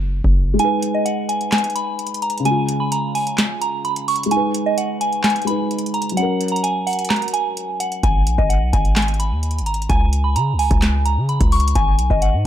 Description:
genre	hip hop, trap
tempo	129 BPM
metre	4/4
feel	half-time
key	G# dorian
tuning	A4 = 441 Hz
part	hard-hitting 808-style bass	bass	0.0-0.6, 8.0-12.4 s	F#1 to C#3	-18 LUFS	equal	none
part	booming analog drum machine	drums	0.2-12.3 s	handclaps, hi-hat, kick drum, snare drum	-20 LUFS	equal	overdrive
part	felt-muted upright piano	accompaniment	0.5-8.1 s	C#3 to B4	-23 LUFS	left 1 dB	low-pass filter
part	soft synth bell	melody	0.6-12.4 s	D#5 to C#6	-21 LUFS	right 1 dB	chorus, phaser, low-pass filter, tape echo
room	light reverb, digital ambience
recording	none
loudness	-16 LUFS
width	side -11 dB against mid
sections	0.0-12.5 A section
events	break 0.0-0.6, 0.6-8.0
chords	0.0 N.C.; 0.6 G#m; 2.5 C#; 4.3 G#m; 6.2 F#; 8.0 G#m; 9.9 C#5; 11.8 G#m

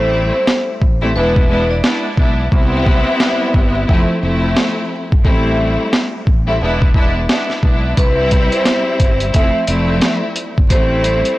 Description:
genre	hip hop, boom-bap hip-hop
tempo	88 BPM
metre	4/4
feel	swing 61% on 16ths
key	C major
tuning	A4 = 441 Hz
part	vibraphone with hard mallets	melody	0.0-2.0, 8.0-11.4 s	B4 to E5	-19 LUFS	equal	high-pass filter, low-pass filter, tape echo
part	clear studio string section	accompaniment	0.0-11.4 s	F3 to E4	-17 LUFS	left 1 dB	cassette tape, high-pass filter, low-pass filter
part	fingered electric bass	bass	0.0-11.2 s	E1 to C2	-19 LUFS	equal	tube saturation
part	boom bap sampler-style drum kit	drums	0.5-11.4 s	hi-hat, kick drum, snare drum	-14 LUFS	equal	none
room	light reverb, small room ambience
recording	blown-out, overdriven recording, vinyl crackle, overdrive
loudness	-12 LUFS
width	side -18 dB against mid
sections	0.0-11.4 A section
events	break 0.0-8.0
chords	0.0 Am7; 1.2 E7; 2.5 Cmaj7; 3.9 Fmaj7; 5.2 Am7; 6.6 E7; 8.0 C; 9.3 Fmaj7; 10.7 Am7

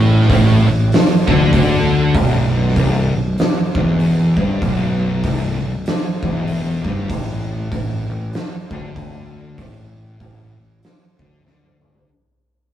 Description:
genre	stoner and doom metal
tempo	97 BPM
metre	4/4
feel	swing 60% on 8ths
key	unclear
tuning	A4 = 440 Hz
part	scooped high-gain guitar	riff	0.0-2.1 s	A2 to D3	-20 LUFS	right 2 dB	distortion
part	thick fuzz guitar	riff	0.0-12.1 s	B1 to D3	-18 LUFS	left 1 dB	distortion
part	thick fuzz guitar	riff	0.0-12.1 s	B1 to D3	-23 LUFS	right 2 dB	distortion
part	fuzz fingered electric bass	bass	0.0-12.0 s	B0 to D2	-23 LUFS	equal	overdrive
part	oversized low-tuned drum kit	drums	0.2-12.1 s	hi-hat, kick drum, snare drum, toms	-19 LUFS	equal	none
room	moderate small room reverb, RT60 0.5 s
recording	rough rehearsal-room recording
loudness	-14 LUFS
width	side -11 dB against mid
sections	0.0-2.1 A section; 2.1-12.1 B section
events	fade-out 2.1-12.1; drum fill 11.5-12.1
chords	0.0 Asus4; 2.1 Cmaj7/B; 7.1 Asus4

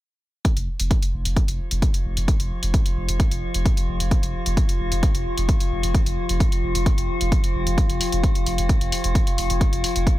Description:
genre	driving peak-time techno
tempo	131 BPM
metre	4/4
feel	straight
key	unclear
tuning	A4 = 439 Hz
part	metallic inharmonic drone	drone	1.6-10.2 s	F3 to F4	-28 LUFS	left 2 dB	chorus, built-in reverb, sidechain pumping
part	electronic hi-hat	drums	0.4-10.2 s	none	-29 LUFS	left 1 dB	none
part	electronic kick drum	drums	0.4-10.2 s	none	-21 LUFS	equal	none
part	saturated sub bass	bass	0.6-10.1 s	F1	-25 LUFS	equal	overdrive, sidechain pumping, low-pass filter
room	digital ambience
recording	bright 1980s-style digital production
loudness	-19 LUFS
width	side -16 dB against mid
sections	0.5-10.2 A section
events	none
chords	none

